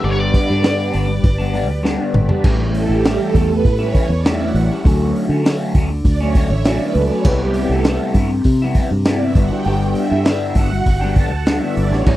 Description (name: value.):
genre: psychedelic rock.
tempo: 100 BPM.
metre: 4/4.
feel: straight.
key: unclear.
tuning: A4 = 440 Hz.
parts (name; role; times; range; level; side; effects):
octave-fuzz lead guitar; melody; 0.0-1.8 s; C#5 to D5; -25 LUFS; left 1 dB; wah, distortion, tape echo.
string machine, cellos; sustained chords; 0.0-12.2 s; G4 to B5; -23 LUFS; right 4 dB; phaser, ensemble chorus.
electric guitar through a small old amp; riff; 0.0-12.2 s; G2 to E4; -20 LUFS; left 2 dB; phaser.
fingered electric bass; bass; 0.0-12.2 s; G1 to D3; -19 LUFS; equal; none.
crunchy breakbeat drum kit; drums; 0.3-12.2 s; crash cymbal, hi-hat, kick drum, snare drum, toms; -16 LUFS; equal; none.
room: little or no reverb.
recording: dry, close 1970s-style studio recording.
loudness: -14 LUFS.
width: side -15 dB against mid.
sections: 0.0-2.4 A section; 2.4-12.2 B section.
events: drum fill 1.8-2.4; string machine solo 2.4-12.2.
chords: 0.0 G; 2.4 A7; 4.9 Dmaj7; 7.3 Cmaj7; 9.4 G.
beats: | 0.04 0.64 1.25 1.85 | 2.45 3.05 3.65 4.25 | 4.85 5.45 6.05 6.66 | 7.26 7.86 8.46 9.06 | 9.66 10.26 10.86 11.46 | 12.07.